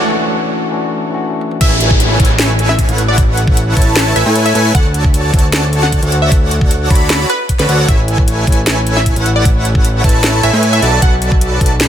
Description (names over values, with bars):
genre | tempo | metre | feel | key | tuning
future bass | 153 BPM | 4/4 | half-time | A major | A4 = 440 Hz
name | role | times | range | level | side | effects
overdriven tine electric piano | accompaniment | 0.0-1.6 s | E3 to F#4 | -20 LUFS | left 3 dB | sidechain pumping, digital delay
supersaw chords | riff | 0.0-11.9 s | E4 to B5 | -18 LUFS | right 1 dB | sidechain pumping
riser and downlifter | sound effects | 0.0-4.7 s | none | -20 LUFS | right 1 dB | none
trap drum kit | drums | 1.4-11.9 s | crash cymbal, hi-hat, snare drum, toms | -19 LUFS | equal | high-pass filter on snare, high-pass filter on hats, high-pass filter on toms, high-pass filter on cymbals
wide unison pluck | melody | 1.6-11.3 s | B4 to F#5 | -21 LUFS | equal | sidechain pumping, dub echo
airy dreamy lead | arpeggios | 1.6-11.9 s | F#5 to B5 | -22 LUFS | equal | chorus, vintage 12-bit sampler grit, sidechain pumping
fat analog bass | bass | 1.6-11.9 s | A1 to A2 | -15 LUFS | equal | sidechain pumping
electronic kick drum | drums | 1.6-11.7 s | none | -12 LUFS | equal | none
room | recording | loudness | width
light reverb, digital ambience | none | -10 LUFS | side -10 dB against mid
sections
0.0-1.6 A section; 1.6-11.9 B section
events
build-up 0.0-1.6; filter sweep on supersaw synth 0.0-1.6; break 0.0-1.6; drum fill 1.4; drop 1.6-11.9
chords
0.0 Dmaj7; 1.6 Amaj9; 4.7 Dmaj7; 7.9 Amaj9; 10.8 Bm7